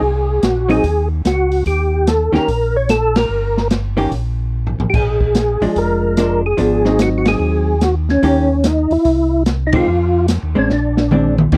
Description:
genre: soul jazz organ trio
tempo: 146 BPM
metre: 4/4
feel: swing 65% on 8ths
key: unclear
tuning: A4 = 440 Hz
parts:
  - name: percussive tonewheel organ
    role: melody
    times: 0.0-11.4 s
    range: Db4 to Db5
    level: -19 LUFS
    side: equal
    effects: slow rotary speaker, chorus vibrato
  - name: mellow tonewheel organ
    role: bass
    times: 0.0-11.6 s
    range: F1 to F2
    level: -21 LUFS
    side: equal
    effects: slow rotary speaker
  - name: open jazz drum kit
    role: drums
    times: 0.4-11.6 s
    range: crash cymbal, hi-hat, kick drum, ride cymbal, snare drum, toms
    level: -21 LUFS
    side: equal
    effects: none
  - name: vintage hollow-body jazz guitar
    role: accompaniment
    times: 0.7-11.6 s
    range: Eb3 to G4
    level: -20 LUFS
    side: equal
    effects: none
room: little or no reverb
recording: dry, close 1970s-style studio recording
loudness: -16 LUFS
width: mono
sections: 0.0-11.5 A section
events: band accent 3.1, 7.2, 9.7; drum fill 4.5-4.9, 10.7-11.5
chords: 0.0 Ab7; 1.7 Eb; 4.9 Bb7; 6.6 Ab7; 8.2 Eb7; 9.1 C; 9.9 Fm7; 10.7 Bb9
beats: | 0.02 0.43 0.84 1.25 | 1.66 2.07 2.48 2.89 | 3.30 3.71 4.12 4.53 | 4.94 5.35 5.76 6.17 | 6.58 7.00 7.41 7.82 | 8.23 8.64 9.05 9.46 | 9.88 10.29 10.70 11.11 | 11.52

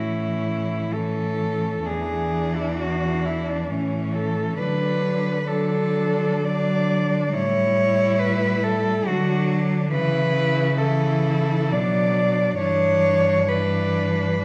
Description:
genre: classical, lyrical piece for cello ensemble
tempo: 58-72 BPM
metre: 3/4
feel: rubato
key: A major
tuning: A4 = 440 Hz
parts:
  - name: rich cello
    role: melody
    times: 0.0-14.4 s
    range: C#4 to D5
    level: -26 LUFS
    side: equal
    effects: none
  - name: rich cello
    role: second line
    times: 0.0-14.4 s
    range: C#4 to E4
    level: -33 LUFS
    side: equal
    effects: none
  - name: clear cello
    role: accompaniment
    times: 0.0-14.4 s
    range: E3 to G3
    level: -28 LUFS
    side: equal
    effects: none
  - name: warm cello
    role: bass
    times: 0.0-14.4 s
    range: E2 to D3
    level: -28 LUFS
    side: equal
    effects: none
room: wet recital hall reverb, RT60 1.7 s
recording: dark, warm production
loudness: -22 LUFS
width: mono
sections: 0.0-14.4 A section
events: none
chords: 0.0 A; 1.9 E9; 3.7 A; 4.6 D; 7.3 A7; 9.1 D; 9.9 A/C#; 11.7 Bm; 12.6 Em7/G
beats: 0.93 | 1.86 2.77 3.70 | 4.58 5.47 6.45 | 7.33 8.19 9.07 | 9.93 10.78 11.71 | 12.58 13.48 14.44

